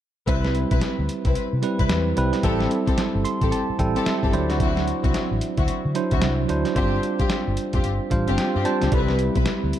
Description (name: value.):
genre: R&B, new jack swing.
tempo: 111 BPM.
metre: 4/4.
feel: swing 62% on 16ths.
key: C major.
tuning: A4 = 438 Hz.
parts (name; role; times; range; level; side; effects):
bell-like tine electric piano; accompaniment; 0.3-9.8 s; F#3 to C6; -24 LUFS; right 4 dB; medium stereo tremolo.
dark studio string section; stabs; 0.3-9.5 s; C4 to B4; -28 LUFS; left 5 dB; digital delay.
vintage muted fingered electric bass; bass; 0.3-9.7 s; F1 to D3; -25 LUFS; equal; none.
boom bap sampler-style drum kit; drums; 0.3-9.8 s; hi-hat, kick drum, snare drum; -25 LUFS; equal; none.
room: light reverb, digital ambience.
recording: dark, warm production.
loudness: -20 LUFS.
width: side -11 dB against mid.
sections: 0.3-9.8 A section.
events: tine electric piano fill 3.0-4.6, 7.8-8.9.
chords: 0.3 Cmaj7; 2.4 Am7; 4.3 D9; 6.8 G7sus4; 8.9 Cmaj7.